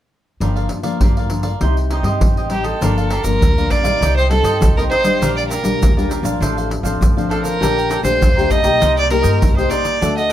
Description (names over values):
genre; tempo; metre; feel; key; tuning
samba and choro; 100 BPM; 4/4; straight; G minor; A4 = 440 Hz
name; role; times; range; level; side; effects
cavaquinho; accompaniment; 0.4-10.3 s; D4 to Bb5; -24 LUFS; right 2 dB; none
nylon-string guitar; accompaniment; 0.4-10.3 s; G2 to G4; -22 LUFS; left 4 dB; none
upright bass; bass; 0.4-10.3 s; G1 to G2; -20 LUFS; equal; none
surdo, pandeiro and egg shaker; percussion; 0.4-10.3 s; none; -18 LUFS; equal; none
rich violin; melody; 2.5-10.3 s; G4 to Eb5; -18 LUFS; right 1 dB; none
room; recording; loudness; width
moderate studio reverb, RT60 0.6 s; none; -14 LUFS; side -12 dB against mid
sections
0.4-2.8 A section; 2.8-10.3 B section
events
none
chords
0.4 Gm7; 1.6 Cm; 2.8 Gm7; 4.0 Cm; 5.2 Gm7/Bb; 6.4 Dm7/A; 7.6 Gmadd9/Bb; 8.8 Cm7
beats
| 0.41 1.01 1.61 2.21 | 2.81 3.42 4.02 4.62 | 5.22 5.82 6.42 7.02 | 7.62 8.22 8.82 9.42 | 10.02